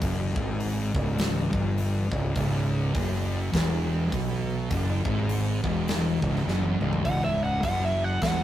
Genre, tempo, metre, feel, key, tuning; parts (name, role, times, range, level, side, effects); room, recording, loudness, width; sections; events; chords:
stoner and doom metal; 102 BPM; 4/4; swing 59% on 8ths; C# minor; A4 = 441 Hz
thick fuzz guitar; riff; 0.0-8.4 s; C#2 to B2; -30 LUFS; left 2 dB; distortion
fuzz fingered electric bass; bass; 0.0-8.4 s; C#1 to B1; -28 LUFS; equal; overdrive
big rock drum kit; drums; 0.0-8.4 s; hi-hat, kick drum, snare drum, toms; -30 LUFS; equal
thick fuzz guitar; riff; 2.4-8.4 s; C#2 to B2; -33 LUFS; right 5 dB; distortion
fuzz lead guitar; melody; 7.1-8.4 s; E5 to F#5; -27 LUFS; right 1 dB; distortion
little or no reverb; rough rehearsal-room recording, tube saturation; -24 LUFS; side -12 dB against mid
0.0-7.0 A section; 7.0-8.4 B section
drum fill 6.5-7.0; lead electric guitar solo 7.0-8.4
0.0 C#m